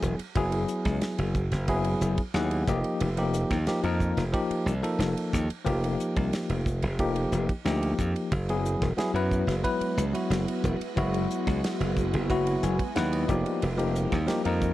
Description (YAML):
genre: electric jazz fusion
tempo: 90 BPM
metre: 4/4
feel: straight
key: unclear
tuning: A4 = 440 Hz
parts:
  - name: bell-like tine electric piano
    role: accompaniment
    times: 0.0-14.7 s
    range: F3 to G#5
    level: -28 LUFS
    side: left 2 dB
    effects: medium stereo tremolo
  - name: glassy slap bass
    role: bass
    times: 0.0-14.7 s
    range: E1 to F#2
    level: -28 LUFS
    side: right 1 dB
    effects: none
  - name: damped 70s drum kit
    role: drums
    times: 0.0-14.7 s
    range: hi-hat, kick drum, ride cymbal, snare drum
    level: -34 LUFS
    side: equal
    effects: none
  - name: soft additive organ-like pad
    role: sustained chords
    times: 9.0-14.7 s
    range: F3 to F#4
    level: -35 LUFS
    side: right 2 dB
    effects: ensemble chorus, built-in reverb
room: small room ambience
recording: dry, close 1970s-style studio recording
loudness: -25 LUFS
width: side -15 dB against mid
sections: 0.0-14.7 A section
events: tine electric piano fill 2.0-3.0, 12.3-13.6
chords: 0.0 F#9sus4; 2.7 F9sus4; 8.3 F#9sus4; 13.3 F9sus4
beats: | 0.36 1.02 1.68 2.35 | 3.01 3.67 4.34 5.00 | 5.66 6.33 6.99 7.65 | 8.32 8.98 9.64 10.31 | 10.97 11.63 12.30 12.96 | 13.62 14.29